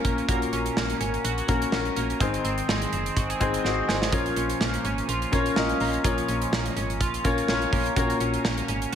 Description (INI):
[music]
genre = 1980s-style pop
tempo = 125 BPM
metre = 4/4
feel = swing 55% on 16ths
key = Bb minor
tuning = A4 = 440 Hz
[part]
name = clear concert grand piano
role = accompaniment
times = 0.0-8.9 s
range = Ab2 to Ab5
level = -26 LUFS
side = left 3 dB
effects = none
[part]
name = twelve-string electric guitar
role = riff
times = 0.0-8.9 s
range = Eb3 to Ab4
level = -30 LUFS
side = right 4 dB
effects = analog chorus, ping-pong delay
[part]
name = solid FM bass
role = bass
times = 0.0-8.9 s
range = Gb1 to Bb1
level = -31 LUFS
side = right 1 dB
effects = none
[part]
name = modern studio drum kit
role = drums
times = 0.0-8.9 s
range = hi-hat, kick drum, snare drum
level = -28 LUFS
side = right 1 dB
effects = gated reverb
[sound]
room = moderate lush hall reverb, RT60 1.5 s, small room ambience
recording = faint mains hum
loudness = -23 LUFS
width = side -8 dB against mid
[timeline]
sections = 0.0-8.9 A section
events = drum fill 3.6-4.1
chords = 0.3 Gb; 2.2 Ab; 4.1 Bbm; 8.0 Gb